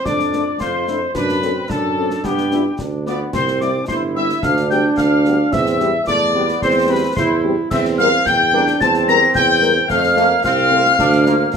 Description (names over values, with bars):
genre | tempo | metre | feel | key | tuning
military-style march for wind band | 110 BPM | 2/4 | straight | C major | A4 = 441 Hz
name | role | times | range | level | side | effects
dark trumpet section | melody | 0.0-11.6 s | G4 to Bb5 | -21 LUFS | left 1 dB | none
mellow wooden piccolo | second line | 0.0-11.6 s | G5 to Bb6 | -21 LUFS | left 3 dB | none
mellow woodwind section | second line | 0.0-11.6 s | G4 to Bb5 | -23 LUFS | left 2 dB | none
clear trombone section | sustained chords | 0.1-11.6 s | G3 to F4 | -22 LUFS | right 3 dB | none
warm tuba | bass | 0.1-11.6 s | G1 to G2 | -20 LUFS | right 4 dB | none
concert snare drum, concert bass drum and clash cymbals | drums | 0.1-11.6 s | none | -28 LUFS | left 1 dB | none
mellow French horn section | accompaniment | 0.3-11.4 s | G3 to Bb4 | -23 LUFS | left 4 dB | none
room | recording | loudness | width
wet large studio reverb, RT60 0.9 s | none | -14 LUFS | side -6 dB against mid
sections
0.0-11.6 A section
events
none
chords
0.1 Dm/F; 1.2 D7/F#; 2.2 G7; 3.3 C; 4.4 G7/D; 5.5 C/E; 7.7 C7/E; 9.9 F; 11.0 Dm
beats
| 0.06 0.61 | 1.15 1.70 | 2.25 2.79 | 3.34 3.89 | 4.43 4.98 | 5.53 6.07 | 6.62 7.17 | 7.71 8.26 | 8.80 9.35 | 9.90 10.44 | 10.99 11.54